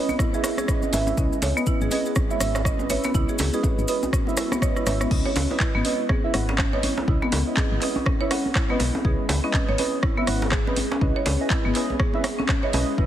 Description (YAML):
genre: afro house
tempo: 122 BPM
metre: 4/4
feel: swing 58% on 16ths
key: C# minor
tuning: A4 = 440 Hz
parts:
  - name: ethereal airy pad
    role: sustained chords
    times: 0.0-13.1 s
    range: G#3 to G#4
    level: -33 LUFS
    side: equal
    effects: ensemble chorus, built-in reverb, sidechain pumping
  - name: buzzing marimba with hard mallets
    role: arpeggios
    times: 0.0-13.1 s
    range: B3 to C#5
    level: -28 LUFS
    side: left 2 dB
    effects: sidechain pumping, tape echo
  - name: deep mellow chord stab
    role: stabs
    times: 0.0-13.1 s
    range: C#4 to F#5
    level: -28 LUFS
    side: right 4 dB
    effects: chorus, phaser, sidechain pumping, tape echo
  - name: djembe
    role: percussion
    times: 0.1-12.9 s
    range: none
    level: -32 LUFS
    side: right 1 dB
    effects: none
  - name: maracas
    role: percussion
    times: 0.1-5.1 s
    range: none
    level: -34 LUFS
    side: left 3 dB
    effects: none
  - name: afro-pop drum kit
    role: drums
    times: 0.2-12.8 s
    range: crash cymbal, handclaps, hi-hat, rim click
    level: -29 LUFS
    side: equal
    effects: none
  - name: electronic kick drum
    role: drums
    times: 0.2-13.1 s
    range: none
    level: -24 LUFS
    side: equal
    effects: none
  - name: woody FM bass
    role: bass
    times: 0.9-13.1 s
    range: G#1 to C#2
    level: -26 LUFS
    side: equal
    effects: sidechain pumping
room: light reverb, digital ambience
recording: heavily compressed radio sound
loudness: -20 LUFS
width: side -11 dB against mid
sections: 0.0-5.1 A section; 5.1-13.1 B section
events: drum fill 4.7-5.1; drop 5.1-13.1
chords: 0.0 C#m9